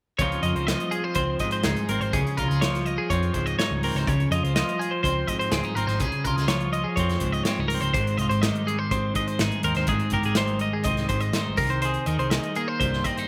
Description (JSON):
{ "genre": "math rock and midwest emo", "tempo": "124 BPM", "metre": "4/4", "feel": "straight", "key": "Db lydian", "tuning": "A4 = 442 Hz", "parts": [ { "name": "twelve-string electric guitar", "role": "accompaniment", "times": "0.2-13.3 s", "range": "G2 to Ab4", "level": "-30 LUFS", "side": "equal", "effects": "spring reverb" }, { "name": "twelve-string electric guitar", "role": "arpeggios", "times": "0.2-13.3 s", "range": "Ab4 to Eb5", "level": "-30 LUFS", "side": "equal", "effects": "spring reverb" }, { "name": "hollow-body short-scale picked electric bass", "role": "bass", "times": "0.2-13.0 s", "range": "G1 to F2", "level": "-30 LUFS", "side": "equal", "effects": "none" }, { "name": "modern studio drum kit", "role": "drums", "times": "0.2-13.3 s", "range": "hi-hat, kick drum, snare drum", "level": "-32 LUFS", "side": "equal", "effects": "none" } ], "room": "little or no reverb", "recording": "none", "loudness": "-25 LUFS", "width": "mono", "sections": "0.2-13.3 A section", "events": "none", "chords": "0.2 Dbmaj9; 7.9 Abmaj7; 11.6 Cm7" }